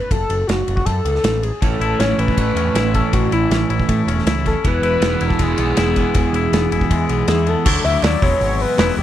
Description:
indie rock; 159 BPM; 4/4; straight; A major; A4 = 440 Hz
hollow square lead; melody; 0.0-9.0 s; E4 to E5; -21 LUFS; left 3 dB; chorus
growling picked electric bass; bass; 0.1-9.0 s; E1 to A2; -21 LUFS; equal; overdrive
loose indie drum kit; drums; 0.1-9.0 s; crash cymbal, hi-hat, kick drum, ride cymbal, snare drum; -21 LUFS; equal
biting overdriven guitar; riff; 1.6-7.7 s; A2 to E4; -22 LUFS; right 8 dB; analog chorus
twangy electric guitar; riff; 1.6-9.0 s; E2 to E4; -23 LUFS; left 8 dB
group handclap; percussion; 8.0-8.9 s; -30 LUFS; right 12 dB
little or no reverb; -15 LUFS; side -12 dB against mid
0.0-7.7 A section; 7.7-9.0 B section
0.0 F#m; 1.6 A; 4.6 E; 7.7 Dadd9; 8.2 Eadd9

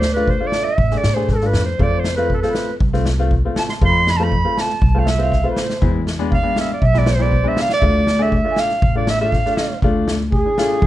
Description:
klezmer; 120 BPM; 4/4; straight; D dorian sharp4; A4 = 435 Hz
warm clarinet; melody; 0.0-10.9 s; G#4 to C6; -20 LUFS; right 2 dB; plate reverb
mellow accordion; second line; 0.0-10.9 s; G#4 to C6; -26 LUFS; right 3 dB
upright bass; bass; 0.0-10.9 s; A1 to A2; -19 LUFS; equal
street-band drum kit; drums; 0.0-10.9 s; kick drum, snare drum; -20 LUFS; equal
clear upright piano; accompaniment; 0.2-10.9 s; G#3 to G#4; -24 LUFS; left 4 dB
light reverb; dark, warm production, nothing above 10.9 kHz; -15 LUFS; side -14 dB against mid
0.0-9.8 A section; 9.8-10.9 B section
clarinet solo 0.0-9.8
0.0 Dm; 1.8 F; 5.8 E; 7.8 Dm

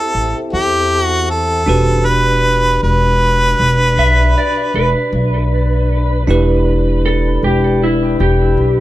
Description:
blues; 52 BPM (dotted quarters); 12/8; straight; E minor; A4 = 440 Hz
warm harmonica; melody; 0.0-5.1 s; G4 to B4; -15 LUFS; right 1 dB
bell-like tine electric piano; accompaniment; 0.0-8.8 s; C4 to B5; -21 LUFS; right 4 dB
tonewheel organ; sustained chords; 0.0-8.8 s; D#3 to B4; -23 LUFS; left 1 dB; slow rotary speaker, overdrive
upright bass; bass; 0.1-8.8 s; E1 to E2; -15 LUFS; equal
electric slide guitar; second line; 4.0-8.8 s; E4 to E5; -18 LUFS; left 1 dB; tape echo
light reverb; -11 LUFS; side -15 dB against mid
0.0-8.8 A section
0.0 Am9; 1.7 Em9

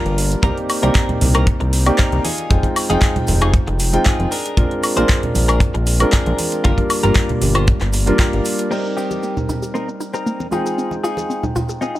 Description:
nu-disco, nu disco; 116 BPM; 4/4; straight; C minor; A4 = 440 Hz
dark concert grand piano; accompaniment; 0.0-12.0 s; G3 to G5; -21 LUFS; equal; sidechain pumping, analog delay
direct-recorded clean electric guitar; riff; 0.0-12.0 s; C4 to C5; -25 LUFS; left 2 dB; wide subtle chorus, low-pass filter, analog delay
fat analog bass; bass; 0.1-8.4 s; F1 to C2; -17 LUFS; equal
pop drum kit; drums; 0.1-12.0 s; crash cymbal, handclaps, hi-hat, shaker, woodblock; -23 LUFS; equal; overdrive, low-pass filter on hats, low-pass filter on snare, low-pass filter on perc, low-pass filter on cymbals, low-pass filter on room
cabasa and congas; percussion; 0.2-11.9 s; -26 LUFS; right 2 dB
kick drum; drums; 0.4-8.3 s; -18 LUFS; equal
wide unison pluck; arpeggios; 8.7-12.0 s; Bb3 to Ab4; -26 LUFS; left 1 dB; sidechain pumping, analog delay
studio reverb; -15 LUFS; side -15 dB against mid
0.0-8.7 A section; 8.7-12.0 B section
filter sweep on synth arpeggio sound 8.7-12.0
0.4 Cm7; 2.2 Fm7; 4.3 Bb7; 6.6 Gm7; 8.7 Cm7; 10.5 Fm7

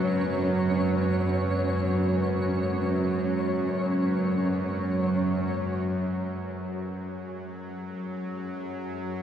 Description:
dark ambient drone; free time; A4 = 440 Hz
dark analog pad; sustained chords; 0.0-5.9 s; G#3 to B4; -32 LUFS; right 2 dB; chorus
bowed-like drone; drone; 0.0-9.2 s; F#2 to F#3; -27 LUFS; equal; built-in reverb
flickering grainy texture; texture; 0.0-9.2 s; G#3 to C#5; -33 LUFS; equal; built-in reverb
wet huge ambient reverb, RT60 7.6 s; dark, warm production; -25 LUFS; side -9 dB against mid
0.0-5.9 A section; 5.9-9.2 B section
0.0 F#sus2

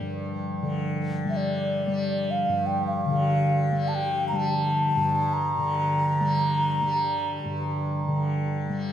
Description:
world meditative, free-time meditation music; free time; G minor; A4 = 440 Hz
tanpura; drone; 0.0-8.9 s; G2 to G3; -28 LUFS; left 1 dB
bronze singing bowl; texture; 0.0-8.9 s; D3 to F3; -29 LUFS; equal
mellow low xiao; melody; 1.3-8.3 s; D5 to Bb5; -26 LUFS; equal; diffuse ambient delay
wet scoring stage reverb, RT60 1.8 s, studio ambience; dark, warm production; -23 LUFS; side -10 dB against mid
0.0-8.9 A section

